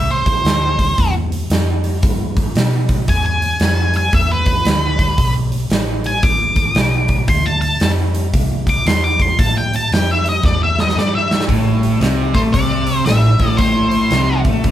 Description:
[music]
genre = blues rock power trio and southern rock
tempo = 114 BPM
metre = 4/4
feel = swing 64% on 8ths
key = A minor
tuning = A4 = 444 Hz
[part]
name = octave-fuzz lead guitar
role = melody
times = 0.0-14.4 s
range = B4 to D6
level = -18 LUFS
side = equal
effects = distortion
[part]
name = vintage muted fingered electric bass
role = bass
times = 0.0-14.7 s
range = G#1 to B2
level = -19 LUFS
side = equal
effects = none
[part]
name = big rock drum kit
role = drums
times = 0.3-14.7 s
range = hi-hat, kick drum, snare drum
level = -17 LUFS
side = equal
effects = none
[part]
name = sludgy distorted guitar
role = riff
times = 11.5-14.7 s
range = A2 to A3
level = -15 LUFS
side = equal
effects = overdrive
[sound]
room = moderate large studio reverb, RT60 0.9 s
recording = band playing live in one room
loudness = -13 LUFS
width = side -12 dB against mid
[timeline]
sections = 0.0-11.5 A section; 11.5-14.7 B section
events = lead electric guitar solo 0.0-11.5; drum fill 10.4-11.5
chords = 0.0 Am9 (rootless); 3.1 E7; 7.3 Dm9; 9.4 A5; 11.5 Am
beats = 0.46 | 0.98 1.51 2.03 2.56 | 3.08 3.61 4.14 4.66 | 5.19 5.71 6.24 6.76 | 7.29 7.81 8.34 8.86 | 9.38 9.91 10.44 10.96 | 11.49 12.01 12.54 13.06 | 13.59 14.12 14.65

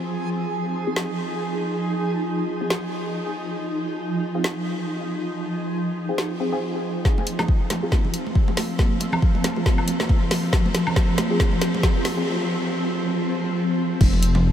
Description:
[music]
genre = deep dubstep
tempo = 138 BPM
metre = 4/4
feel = swing 56% on 16ths, half-time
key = F minor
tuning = A4 = 440 Hz
[part]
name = granular cloud pad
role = sustained chords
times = 0.0-14.5 s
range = F3 to Eb4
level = -25 LUFS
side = equal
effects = built-in reverb, lush chorus
[part]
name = backwards swelling texture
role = texture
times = 0.0-7.1 s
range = Ab4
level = -33 LUFS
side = right 4 dB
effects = built-in reverb, wide subtle chorus
[part]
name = filtered dub chord stab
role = stabs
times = 0.9-12.2 s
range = C4 to Ab4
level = -32 LUFS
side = left 1 dB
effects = phaser, wide subtle chorus, cassette tape, dub echo
[part]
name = deep house drum kit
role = drums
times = 1.0-14.3 s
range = crash cymbal, hi-hat, snare drum, woodblock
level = -29 LUFS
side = left 1 dB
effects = none
[part]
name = electronic kick drum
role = drums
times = 7.0-14.1 s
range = none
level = -19 LUFS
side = equal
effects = none
[part]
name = congas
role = percussion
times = 7.2-14.4 s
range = none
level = -30 LUFS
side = right 2 dB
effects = dub echo
[part]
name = dark detuned saw bass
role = bass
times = 14.0-14.5 s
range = F1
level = -18 LUFS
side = equal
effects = none
[sound]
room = moderate huge ambient reverb, RT60 8.0 s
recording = dreamy mix soaked in reverb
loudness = -20 LUFS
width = side -10 dB against mid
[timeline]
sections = 0.0-7.1 A section; 7.1-14.0 B section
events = build-up 7.1-14.0; drum fill 7.1-12.3; filter sweep on synth stab 7.1-14.0; break 12.3-14.0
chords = 0.0 Fm; 7.1 F5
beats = | 0.10 0.53 0.96 1.40 | 1.83 2.27 2.70 3.14 | 3.57 4.01 4.44 4.88 | 5.31 5.75 6.18 6.62 | 7.05 7.49 7.92 8.36 | 8.79 9.22 9.66 10.10 | 10.53 10.96 11.40 11.83 | 12.27 12.70 13.14 13.57 | 14.01 14.44

